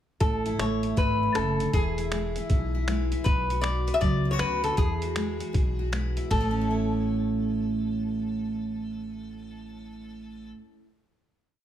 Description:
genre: honky-tonk and classic country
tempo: 158 BPM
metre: 4/4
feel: swing 64% on 8ths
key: A major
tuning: A4 = 440 Hz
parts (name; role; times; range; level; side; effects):
- lap resonator guitar; melody; 0.2-10.5 s; G#4 to E5; -29 LUFS; left 2 dB; none
- picked steel-string acoustic guitar; accompaniment; 0.2-11.0 s; A2 to C#5; -30 LUFS; right 1 dB; none
- upright bass; bass; 0.2-10.5 s; E1 to E2; -31 LUFS; equal; none
- boom bap sampler-style drum kit; drums; 0.2-6.4 s; finger snaps, hi-hat, kick drum, ride cymbal; -28 LUFS; equal; none
room: light reverb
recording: none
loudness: -24 LUFS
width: side -11 dB against mid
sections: 0.2-6.3 interlude; 6.3-9.4 final chord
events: none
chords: 0.2 A; 1.7 E; 3.3 Bm; 4.8 Eadd9; 6.3 A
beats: | 0.20 0.58 0.97 1.35 | 1.73 2.11 2.50 2.88 | 3.26 3.64 4.02 4.40 | 4.78 5.17 5.55 5.93 | 6.31 6.69 7.07 7.45 | 7.83 8.21 8.59 8.97

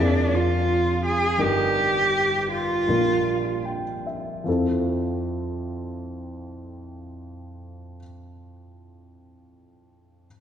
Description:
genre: folk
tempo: 73-86 BPM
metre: 4/4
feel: straight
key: F major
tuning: A4 = 439 Hz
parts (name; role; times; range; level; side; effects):
- warm cello; melody; 0.0-3.6 s; D4 to Ab4; -22 LUFS; right 1 dB; none
- dark upright piano; accompaniment; 0.0-10.3 s; F1 to G5; -26 LUFS; equal; none
room: wet concert hall reverb, RT60 2.3 s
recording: recorded in a church or concert hall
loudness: -21 LUFS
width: side -9 dB against mid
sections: 0.0-4.5 A section; 4.5-7.8 B section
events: slowing down 0.0-4.5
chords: 0.0 Bb7/F; 1.4 Ebmaj7/G; 2.9 Bb6; 4.5 Fmaj7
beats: 0.68 | 1.39 2.12 2.88 3.66 | 4.47 5.29 6.11 6.94

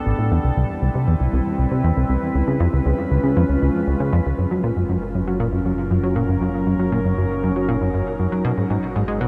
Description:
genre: ambient, sequencer-driven space music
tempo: 118 BPM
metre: 4/4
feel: straight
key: F# major from 4.4 s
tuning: A4 = 440 Hz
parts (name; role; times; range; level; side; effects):
- evolving wavetable pad; sustained chords; 0.0-9.3 s; F#3 to B4; -26 LUFS; equal; chorus, built-in reverb, shimmer reverb
- plucky analog bass; riff; 0.1-9.3 s; A1 to G#3; -22 LUFS; equal; subtle chorus, tape echo
- fat analog bass; bass; 4.4-9.3 s; F#1 to G#1; -32 LUFS; equal; none
room: wet huge ambient reverb, RT60 7.5 s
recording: dark, warm production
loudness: -20 LUFS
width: mono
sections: 0.0-4.4 A section; 4.4-9.3 B section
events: filter sweep on analog synth bass 0.0-4.4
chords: 0.3 Cmaj7; 2.3 C#7; 4.4 F#maj7; 8.4 G#m7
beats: | 0.31 0.82 1.33 1.84 | 2.35 2.85 3.36 3.87 | 4.38 4.89 5.40 5.91 | 6.42 6.92 7.43 7.94 | 8.45 8.96

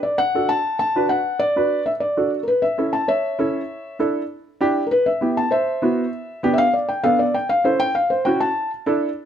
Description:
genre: latin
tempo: 197 BPM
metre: 4/4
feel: straight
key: D major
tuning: A4 = 440 Hz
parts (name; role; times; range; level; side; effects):
- felt-muted upright piano; melody; 0.0-8.7 s; Bb4 to A5; -19 LUFS; left 1 dB; none
- dark upright piano; accompaniment; 0.3-9.1 s; B3 to B4; -21 LUFS; right 2 dB; none
room: light reverb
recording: close, detailed microphones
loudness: -18 LUFS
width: side -9 dB against mid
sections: 0.0-2.5 A section; 2.5-9.3 B section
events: felt piano solo 2.5-9.3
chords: 0.0 D; 2.5 A; 3.7 Dsus2; 4.9 Em; 6.1 G; 7.3 A; 8.6 Dsus2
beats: | 0.05 0.35 0.66 0.96 | 1.26 1.57 1.87 2.17 | 2.48 2.78 3.09 3.39 | 3.69 4.00 4.30 4.61 | 4.91 5.22 5.52 5.82 | 6.13 6.43 6.74 7.04 | 7.34 7.65 7.95 8.26 | 8.56 8.86

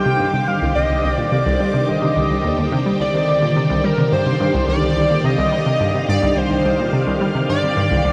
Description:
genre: ambient, sequencer-driven space music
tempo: 107 BPM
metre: 4/4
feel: straight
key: C minor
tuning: A4 = 443 Hz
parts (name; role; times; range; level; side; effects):
- pulse-width lead; melody; 0.0-8.1 s; Bb4 to G5; -22 LUFS; equal; chorus, shimmer reverb, delay
- phased string machine; sustained chords; 0.0-8.1 s; D3 to F5; -23 LUFS; equal; ensemble chorus, phaser, shimmer reverb
- bubbling stepped-filter texture; texture; 0.0-8.1 s; D6; -34 LUFS; equal; chorus, built-in reverb, shimmer reverb
- analog pluck; riff; 0.1-8.1 s; C2 to G3; -22 LUFS; equal; chorus, delay
room: wet huge ambient reverb, RT60 7.8 s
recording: dark, warm production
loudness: -18 LUFS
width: mono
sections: 0.0-8.1 A section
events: none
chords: 0.0 Cmadd9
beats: 0.20 | 0.76 1.32 1.88 2.44 | 3.00 3.56 4.12 4.69 | 5.25 5.81 6.37 6.93 | 7.49 8.05

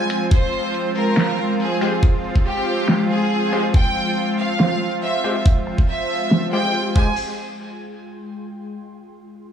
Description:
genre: heavy wobble dubstep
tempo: 140 BPM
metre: 4/4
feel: half-time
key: F harmonic minor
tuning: A4 = 442 Hz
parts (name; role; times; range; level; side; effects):
- clear studio violin section; melody; 0.0-7.1 s; G4 to Ab5; -24 LUFS; right 1 dB; tape echo
- lush unison pad; sustained chords; 0.0-7.2 s; F3 to G4; -24 LUFS; right 1 dB; chorus, sidechain pumping
- supersaw stab; stabs; 0.0-7.1 s; Ab3 to C5; -26 LUFS; left 3 dB; low-pass filter, tape echo
- ethereal airy pad; texture; 0.0-8.8 s; Ab3 to E6; -27 LUFS; left 2 dB; ensemble chorus, built-in reverb, phaser, sidechain pumping
- dubstep drum kit; drums; 0.1-7.0 s; crash cymbal, finger snaps, hi-hat, snare drum; -21 LUFS; right 1 dB; overdrive, low-pass filter on hats, low-pass filter on cymbals, low-pass filter on snare
- electronic kick drum; drums; 0.3-7.0 s; none; -15 LUFS; equal; none
room: light reverb, digital ambience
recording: small room ambience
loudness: -17 LUFS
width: side -8 dB against mid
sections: 0.0-7.2 A section; 7.2-8.9 B section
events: fade-out on ambient pad 0.0-7.2; filter sweep on drum 0.0-7.2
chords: 0.0 Fmadd9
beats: | 0.31 0.74 1.17 1.60 | 2.03 2.46 2.88 3.31 | 3.74 4.17 4.60 5.03 | 5.46 5.88 6.31 6.74 | 7.17 7.60 8.03 8.46

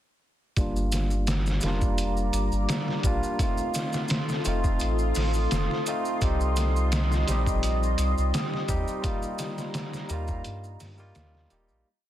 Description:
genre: trip hop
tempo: 85 BPM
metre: 4/4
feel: swing 53% on 16ths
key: G minor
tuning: A4 = 440 Hz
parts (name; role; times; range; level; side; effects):
- barky tine electric piano; accompaniment; 0.6-11.9 s; G3 to G4; -32 LUFS; equal; harmonic tremolo, low-pass filter, tape echo
- deep dark ambient pad; sustained chords; 1.4-11.8 s; G4 to Eb6; -33 LUFS; left 1 dB; chorus, built-in reverb
- soft dub sub bass; bass; 0.6-11.8 s; Eb1 to G2; -27 LUFS; equal; tube saturation
- trip hop sampler-style drum kit; drums; 0.6-11.7 s; hi-hat, kick drum, snare drum; -29 LUFS; equal; overdrive, small room ambience
- maracas; percussion; 0.6-11.8 s; none; -40 LUFS; equal; none
- bowed-like drone; texture; 1.6-11.9 s; F4; -38 LUFS; left 3 dB; built-in reverb
room: little or no reverb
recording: dense, heavily limited modern master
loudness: -24 LUFS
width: side -12 dB against mid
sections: 0.6-11.9 groove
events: filter sweep on tine electric piano 0.6-11.9; fade-out 8.1-11.9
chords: 0.6 Gm7; 3.4 F7; 6.2 Cm; 9.0 Ebadd9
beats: | 0.57 1.28 1.99 2.69 | 3.40 4.10 4.81 5.51 | 6.22 6.93 7.63 8.34 | 9.04 9.75 10.46 11.16

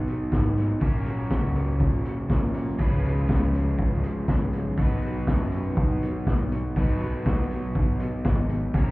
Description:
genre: indie rock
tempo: 121 BPM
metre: 4/4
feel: straight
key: unclear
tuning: A4 = 440 Hz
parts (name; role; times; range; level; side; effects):
- overdriven electric guitar; riff; 0.0-8.9 s; A#2 to B4; -28 LUFS; equal; none
- fuzz picked electric bass; bass; 0.0-8.9 s; G#1 to A#2; -27 LUFS; equal; overdrive
- raw garage drum kit; drums; 0.1-8.9 s; hi-hat, kick drum, snare drum; -26 LUFS; equal; none
room: studio ambience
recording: heard muffled through a wall, club reverb, EQ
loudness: -22 LUFS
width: side -20 dB against mid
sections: 0.0-8.9 A section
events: none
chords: 0.0 B; 0.8 F#; 2.8 C#5; 4.8 B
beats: 0.32 | 0.82 1.31 1.81 2.30 | 2.80 3.29 3.79 4.29 | 4.78 5.28 5.77 6.27 | 6.76 7.26 7.75 8.25 | 8.74

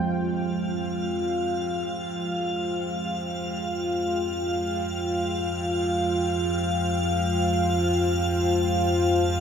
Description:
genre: dark ambient drone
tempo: free time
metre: none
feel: none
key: F minor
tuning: A4 = 440 Hz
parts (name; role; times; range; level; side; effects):
- dark analog pad; sustained chords; 0.0-9.4 s; Ab3 to G5; -31 LUFS; right 1 dB; chorus
- analog drone; drone; 0.0-9.4 s; F2 to F3; -29 LUFS; equal; chorus
- icy glass pad; texture; 0.4-9.4 s; F4 to F5; -26 LUFS; left 1 dB; chorus, built-in reverb
room: wet huge ambient reverb, RT60 7.6 s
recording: none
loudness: -23 LUFS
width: side -7 dB against mid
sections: 0.0-9.4 A section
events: fade-in on synth drone 0.0-9.4; fade-in on analog synth pad 0.0-9.4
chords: 0.0 Fmadd9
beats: free time

